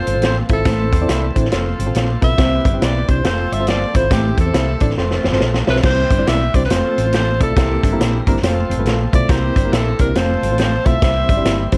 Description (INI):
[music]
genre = uptempo 1960s-style soul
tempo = 139 BPM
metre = 4/4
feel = swing 63% on 8ths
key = C major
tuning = A4 = 440 Hz
[part]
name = edgy alto saxophone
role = melody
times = 0.0-11.7 s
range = G4 to E5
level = -24 LUFS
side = equal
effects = none
[part]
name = warm horn section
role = second line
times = 0.0-11.7 s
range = A3 to C5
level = -32 LUFS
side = equal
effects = none
[part]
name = reed electric piano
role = accompaniment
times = 0.0-11.8 s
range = G3 to D5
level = -25 LUFS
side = equal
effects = overdrive, fast tremolo
[part]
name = overdriven tonewheel organ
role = sustained chords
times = 0.0-11.8 s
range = E3 to Bb4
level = -35 LUFS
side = equal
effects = none
[part]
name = clean electric guitar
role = riff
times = 0.1-11.8 s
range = A3 to E4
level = -30 LUFS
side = equal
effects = none
[part]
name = hollow-body short-scale fingered electric bass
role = bass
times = 0.1-11.8 s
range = E1 to E2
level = -22 LUFS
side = equal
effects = none
[part]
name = vintage drum kit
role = drums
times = 0.1-11.8 s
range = crash cymbal, hi-hat, kick drum, snare drum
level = -20 LUFS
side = equal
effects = none
[sound]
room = light reverb, studio reverb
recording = dark, warm production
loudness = -16 LUFS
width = mono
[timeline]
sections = 0.0-5.8 A section; 5.8-11.8 A section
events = drum fill 5.0-5.8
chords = 0.0 F; 0.7 Am; 1.5 F; 2.4 C; 3.2 F; 4.1 Am; 5.0 F; 5.8 C; 6.7 F; 7.6 C7; 8.4 F; 9.3 C7; 10.2 F; 11.0 C